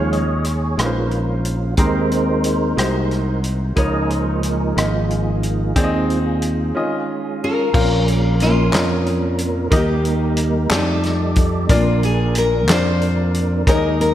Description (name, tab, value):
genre	slow gospel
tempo	60 BPM (dotted quarters)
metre	6/8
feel	straight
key	unclear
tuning	A4 = 440 Hz
part	clear baby grand piano	accompaniment	0.0-14.1 s	Bb2 to F5	-24 LUFS	left 1 dB	none
part	percussive tonewheel organ	sustained chords	0.0-14.1 s	F3 to F5	-23 LUFS	right 2 dB	fast rotary speaker, chorus vibrato
part	fingered electric bass	bass	0.0-14.1 s	Ab1 to F2	-20 LUFS	equal	none
part	natural country drum kit	drums	0.1-14.1 s	crash cymbal, hi-hat, kick drum, rim click, snare drum	-21 LUFS	equal	none
part	nylon-string guitar	melody	7.4-14.1 s	Bb3 to C5	-21 LUFS	left 2 dB	none
part	group handclap	percussion	8.7-13.0 s	none	-26 LUFS	left 2 dB	none
room	moderate lush hall reverb, RT60 1.8 s, small room ambience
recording	dreamy mix soaked in reverb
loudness	-16 LUFS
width	side -12 dB against mid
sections	0.0-7.7 A section; 7.7-14.1 B section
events	tonewheel organ solo 0.0-7.7; break 6.7-7.7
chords	0.0 Eb9sus4; 1.8 Abmaj9/Eb; 2.8 Ab7/C; 3.8 Db69; 5.8 Ab/Eb; 6.7 Eb9sus4; 7.7 Bbm; 9.7 Eb; 10.7 F13; 11.7 Bb